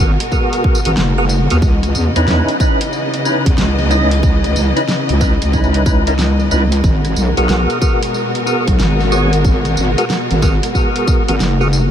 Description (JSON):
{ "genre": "glitch hop", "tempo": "92 BPM", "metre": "4/4", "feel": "swing 64% on 16ths", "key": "G# minor", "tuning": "A4 = 435 Hz", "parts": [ { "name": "rich studio string section", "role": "sustained chords", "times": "0.0-11.9 s", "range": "B2 to D#5", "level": "-21 LUFS", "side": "equal", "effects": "sidechain pumping" }, { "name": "percussive tonewheel organ", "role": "stabs", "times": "0.0-11.7 s", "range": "B3 to D#5", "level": "-19 LUFS", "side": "equal", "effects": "overdrive, chorus vibrato, slow rotary speaker, sidechain pumping, ping-pong delay" }, { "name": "wobble bass", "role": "bass", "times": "0.0-11.9 s", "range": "F#1 to E2", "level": "-14 LUFS", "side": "equal", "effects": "chorus, overdrive" }, { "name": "pop drum kit", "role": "drums", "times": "0.2-11.9 s", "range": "hi-hat, rim click, snare drum, tambourine", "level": "-23 LUFS", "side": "equal", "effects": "none" }, { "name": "electronic kick drum", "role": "drums", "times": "0.3-11.2 s", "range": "none", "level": "-15 LUFS", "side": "equal", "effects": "none" } ], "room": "light reverb, digital ambience", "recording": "none", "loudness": "-12 LUFS", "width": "side -9 dB against mid", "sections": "0.0-11.9 A section", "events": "none", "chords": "0.0 G#m9; 1.6 C#m9; 6.8 G#m9", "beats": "0.32 0.97 | 1.62 2.27 2.93 3.58 | 4.23 4.88 5.54 6.19 | 6.84 7.49 8.14 8.80 | 9.45 10.10 10.75 11.40" }